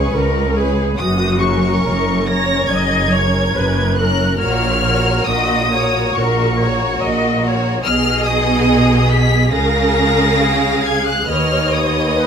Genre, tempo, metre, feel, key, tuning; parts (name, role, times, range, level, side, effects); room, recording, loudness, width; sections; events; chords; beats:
classical, slow romantic movement for string orchestra; 70 BPM; 4/4; uneven beats, rubato; F# major; A4 = 440 Hz
warm studio violin section; melody; 0.0-12.3 s; C#6 to B6; -21 LUFS; left 2 dB
rich studio violin section; second line; 0.0-12.3 s; C#4 to E#5; -21 LUFS; equal
rich chamber viola section; accompaniment; 0.0-12.3 s; F#4 to D#5; -20 LUFS; equal
clear studio cello section; bass; 0.1-12.3 s; C#2 to C#3; -20 LUFS; right 2 dB
rich studio double bass section; bass; 0.1-12.3 s; F#1 to D#2; -20 LUFS; right 1 dB
light reverb; close, detailed microphones; -13 LUFS; side -7 dB against mid
0.0-12.3 A section
0.0 C#7(no3); 1.0 F#; 4.4 F#/A#; 7.8 G#m/B; 9.5 C#; 11.3 B/D#
0.11 | 0.98 1.84 2.70 3.56 | 4.40 5.26 6.15 7.00 | 7.84 8.67 9.52 10.40 | 11.29 12.20